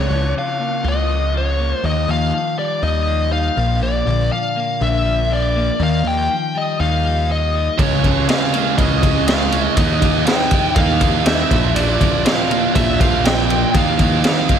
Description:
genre	quiet-loud alternative rock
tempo	121 BPM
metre	4/4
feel	straight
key	unclear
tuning	A4 = 440 Hz
part	bluesy overdriven lead guitar	melody	0.0-14.6 s	Db5 to G5	-21 LUFS	left 1 dB	distortion, slapback echo
part	clean electric guitar	arpeggios	0.0-14.6 s	Bb2 to F4	-24 LUFS	left 6 dB	wide subtle chorus
part	fuzz picked electric bass	bass	0.0-14.2 s	Bb1 to Eb2	-20 LUFS	equal	overdrive
part	biting overdriven guitar	riff	7.8-14.6 s	Bb2 to Eb4	-19 LUFS	right 11 dB	none
part	raw garage drum kit	drums	7.8-14.6 s	kick drum, ride cymbal, snare drum	-18 LUFS	equal	none
room	moderate scoring stage reverb, RT60 1.5 s, small room ambience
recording	big arena sound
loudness	-14 LUFS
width	side -8 dB against mid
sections	0.0-14.6 A section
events	none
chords	0.0 Db6; 1.8 Ebadd9; 3.6 Bb; 5.8 Ebadd9; 7.8 Db6; 9.8 Ebadd9; 11.5 Bb; 13.8 Ebadd9

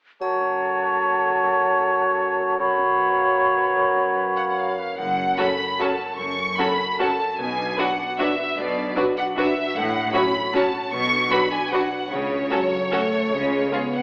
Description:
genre	classical, orchestral ballroom waltz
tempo	151 BPM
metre	3/4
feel	uneven beats, rubato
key	F# minor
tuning	A4 = 442 Hz
part	clear oboe	second line	0.2-4.7 s	C#5	-25 LUFS	equal	none
part	mellow silver concert flute	second line	0.2-4.7 s	A5 to B5	-28 LUFS	equal	none
part	mellow bassoon	accompaniment	0.2-4.7 s	F#3	-26 LUFS	equal	none
part	concert harp	arpeggios	0.2-14.0 s	F#2 to F#5	-33 LUFS	equal	none
part	triangle	percussion	0.2-1.0 s	none	-52 LUFS	equal	none
part	warm studio violin section	melody	4.4-14.0 s	C#5 to C#6	-27 LUFS	equal	none
part	rich studio cello section	bass	5.0-13.7 s	F#2 to C#3	-32 LUFS	equal	none
part	warm studio double bass section	bass	5.0-13.7 s	F#1 to C#2	-40 LUFS	equal	none
part	clear studio violin section	second line	5.4-13.8 s	E#4 to C#5	-30 LUFS	equal	none
part	rich studio viola section	accompaniment	5.4-13.8 s	F#3 to D4	-30 LUFS	equal	none
part	mellow French horn section	sustained chords	5.4-14.0 s	F#3 to A4	-30 LUFS	equal	none
room	wet recital hall reverb, RT60 1.3 s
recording	AM radio sound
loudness	-22 LUFS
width	mono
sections	0.2-5.0 A section; 5.0-14.0 B section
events	none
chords	0.2 F#m; 2.6 C#7/F#; 5.0 F#m; 7.4 Bm; 9.8 F#m/A; 10.9 Bm; 12.1 F#m/C#; 13.3 C#5

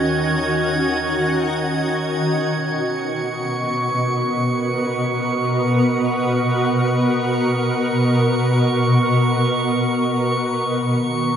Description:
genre	ambient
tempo	free time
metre	none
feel	none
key	B major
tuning	A4 = 440 Hz
part	shimmering ambient pad	sustained chords	0.0-11.4 s	B2 to D#5	-18 LUFS	equal	chorus, built-in reverb, shimmer reverb
part	warm sub bass	bass	0.0-2.2 s	D#2	-39 LUFS	equal	none
part	drifting glass-harmonics texture	texture	0.0-11.4 s	C#6 to G#6	-24 LUFS	right 1 dB	chorus, built-in reverb, shimmer reverb
room	wet huge ambient reverb, RT60 7.9 s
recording	none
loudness	-17 LUFS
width	side -8 dB against mid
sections	0.0-2.2 A section; 2.2-11.4 B section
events	filter sweep on ambient pad 2.2-11.4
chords	0.0 D#m7; 2.2 Bmaj7; 10.4 D#7(no3)

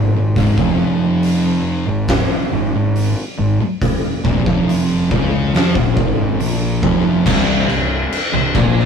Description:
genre	stoner and doom metal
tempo	70 BPM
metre	4/4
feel	straight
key	unclear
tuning	A4 = 441 Hz
part	thick fuzz guitar	riff	0.0-8.9 s	C2 to F3	-21 LUFS	left 8 dB	distortion
part	thick fuzz guitar	riff	0.0-8.9 s	C2 to F3	-18 LUFS	right 4 dB	distortion
part	fuzz picked electric bass	bass	0.0-8.9 s	C1 to F2	-22 LUFS	equal	overdrive
part	oversized low-tuned drum kit	drums	0.4-8.9 s	crash cymbal, hi-hat, kick drum, snare drum	-18 LUFS	equal	none
part	high-gain distorted guitar	riff	7.3-8.9 s	C2 to Bb2	-20 LUFS	equal	distortion
room	moderate studio reverb, RT60 0.6 s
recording	rough rehearsal-room recording, warm saturation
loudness	-14 LUFS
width	side -6 dB against mid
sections	0.0-7.3 A section; 7.3-8.9 B section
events	none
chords	0.0 Fmadd11; 7.3 N.C.

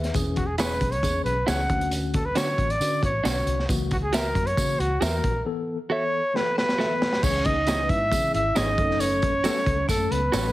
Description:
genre	uptempo 1960s-style soul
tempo	136 BPM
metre	4/4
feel	straight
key	unclear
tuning	A4 = 440 Hz
part	mellow tine electric piano	accompaniment	0.0-10.5 s	D3 to E5	-31 LUFS	left 4 dB	medium stereo tremolo
part	vintage muted fingered electric bass	bass	0.0-10.5 s	E1 to D3	-28 LUFS	equal	none
part	crunchy breakbeat drum kit	drums	0.0-10.4 s	crash cymbal, hi-hat, kick drum, snare drum	-27 LUFS	equal	none
part	tambourine	percussion	0.2-10.4 s	none	-37 LUFS	right 4 dB	none
part	dark trumpet	melody	0.4-10.5 s	F#4 to F#5	-25 LUFS	equal	none
part	clean electric guitar	stabs	0.6-10.5 s	D4 to E5	-30 LUFS	right 4 dB	none
part	vibraphone with medium hard mallets	second line	6.6-10.5 s	A3 to E4	-32 LUFS	right 3 dB	none
room	light reverb, studio reverb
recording	heavily compressed radio sound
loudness	-22 LUFS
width	side -16 dB against mid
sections	0.0-7.2 A section; 7.2-10.5 B section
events	trumpet solo 0.0-7.2; drum fill 6.3-7.2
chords	0.1 E6; 1.7 Dmaj7; 3.7 F#7/C#; 5.5 B7sus4; 7.2 C#m; 8.8 F#m

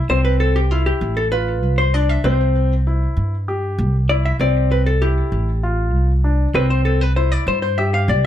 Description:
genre	progressive instrumental, band music in an uneven meter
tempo	195 BPM (eighths)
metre	7/8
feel	straight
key	C major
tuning	A4 = 440 Hz
part	warm grand piano	arpeggios	0.0-8.3 s	C4 to G4	-24 LUFS	left 2 dB	plate reverb
part	hollow-body jazz guitar	melody	0.1-8.3 s	F4 to F5	-21 LUFS	left 2 dB	plate reverb, ping-pong delay
part	upright bass	bass	0.1-8.3 s	A1 to G2	-17 LUFS	equal	none
room	light reverb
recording	none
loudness	-16 LUFS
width	side -11 dB against mid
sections	0.0-8.3 A section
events	hollow-body jazz guitar solo 0.0-8.3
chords	0.1 Dm9 (rootless); 2.3 C; 4.4 Dm9 (rootless); 6.6 C

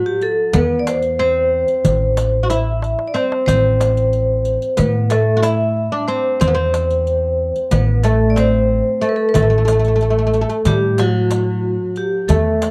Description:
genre	Turkish makam ensemble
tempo	184 BPM (eighths)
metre	9/8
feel	straight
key	A makam huseyni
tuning	A4 = 439 Hz
part	vibraphone with medium hard mallets	melody	0.0-12.7 s	F#4-30c to E5	-20 LUFS	equal	none
part	oud	second line	0.0-12.7 s	F#3-30c to F#4-30c	-25 LUFS	equal	none
part	riq	percussion	0.2-12.7 s	none	-33 LUFS	equal	none
part	upright bass	bass	0.5-12.7 s	A1 to A2	-21 LUFS	equal	none
part	darbuka	percussion	0.5-12.7 s	none	-23 LUFS	equal	none
room	studio reverb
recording	dry, close 1970s-style studio recording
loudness	-17 LUFS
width	mono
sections	0.0-12.7 A section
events	drum fill 2.8-3.5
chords	none

